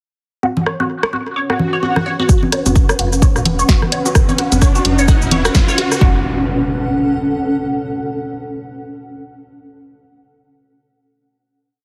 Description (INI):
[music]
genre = minimal techno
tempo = 129 BPM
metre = 4/4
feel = swing 58% on 16ths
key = F# minor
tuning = A4 = 440 Hz
[part]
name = resonant blip pluck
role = riff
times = 0.4-6.2 s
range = F#4 to C#5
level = -24 LUFS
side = equal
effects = phaser, lush chorus, sidechain pumping, tape echo
[part]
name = electronic congas and rim click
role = percussion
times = 0.4-6.0 s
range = none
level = -21 LUFS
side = equal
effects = studio reverb, digital delay
[part]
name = granular cloud pad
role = texture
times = 1.4-7.8 s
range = C#4 to F#5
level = -23 LUFS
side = equal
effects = built-in reverb, sidechain pumping
[part]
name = swell, riser and impact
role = sound effects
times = 1.6-7.9 s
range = none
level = -26 LUFS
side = equal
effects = none
[part]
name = rubbery square bass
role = bass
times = 2.3-6.2 s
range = E1 to F#1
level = -22 LUFS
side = equal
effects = sidechain pumping
[part]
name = electronic kick drum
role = drums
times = 2.3-6.1 s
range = none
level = -14 LUFS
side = equal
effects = studio reverb
[part]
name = house drum kit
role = drums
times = 2.3-6.0 s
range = hi-hat, shaker, snare drum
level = -21 LUFS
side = equal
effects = studio reverb
[sound]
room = moderate small room reverb, RT60 0.5 s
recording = heavily compressed radio sound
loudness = -15 LUFS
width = mono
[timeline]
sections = 0.4-2.3 intro; 2.3-6.0 build; 6.0-7.9 final chord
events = filter sweep on synth arpeggio sound 0.4-2.3, 2.3-6.0; swell 1.6-2.3; build-up 2.3-6.0; riser 2.3-6.0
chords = 0.4 F#sus4; 6.0 F#m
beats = | 0.43 0.90 1.36 1.83 | 2.29 2.76 3.22 3.69 | 4.15 4.62 5.08 5.55 | 6.01 6.48 6.94 7.41